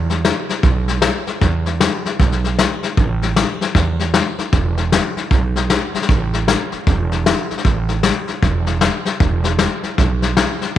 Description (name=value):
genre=rockabilly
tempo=154 BPM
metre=4/4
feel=swing 62% on 8ths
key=unclear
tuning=A4 = 440 Hz
part: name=upright bass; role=bass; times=0.0-10.7 s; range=E1 to E2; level=-18 LUFS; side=right 3 dB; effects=none
part: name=vintage brush drum kit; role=drums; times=0.1-10.8 s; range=hi-hat, kick drum, snare drum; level=-16 LUFS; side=left 3 dB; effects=none
room=light reverb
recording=1960s-style stereo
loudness=-15 LUFS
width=side -12 dB against mid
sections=0.0-10.8 A section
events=none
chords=none